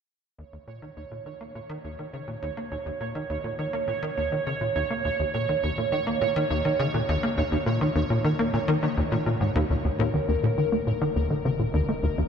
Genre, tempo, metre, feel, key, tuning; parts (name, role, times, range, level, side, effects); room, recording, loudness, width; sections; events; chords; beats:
ambient, sequencer-driven space music; 103 BPM; 4/4; straight; A4 = 439 Hz
tight sequencer bass; riff; 0.4-12.2 s; Eb2 to Bb3; -25 LUFS; left 1 dB; lush chorus, ping-pong delay
pulsing gated texture; texture; 0.4-12.3 s; Bb4 to Db5; -29 LUFS; right 3 dB; chorus, built-in reverb
warbly dusty pluck; arpeggios; 9.7-12.1 s; Db4 to Ab4; -42 LUFS; equal
warm sub bass; bass; 9.7-12.3 s; Eb1; -46 LUFS; left 1 dB
wet cathedral reverb, RT60 4.9 s; in a vast, echoing space; -23 LUFS; side -7 dB against mid
0.4-9.7 A section; 9.7-12.3 B section
fade-in on analog synth bass 0.4-9.7; filter sweep on analog synth bass 9.7-12.3
0.4 Eb5; 9.7 Eb7(no3)
| 0.39 0.97 1.55 2.13 | 2.71 3.30 3.88 4.46 | 5.04 5.63 6.21 6.79 | 7.38 7.96 8.54 9.12 | 9.71 10.29 10.87 11.45 | 12.04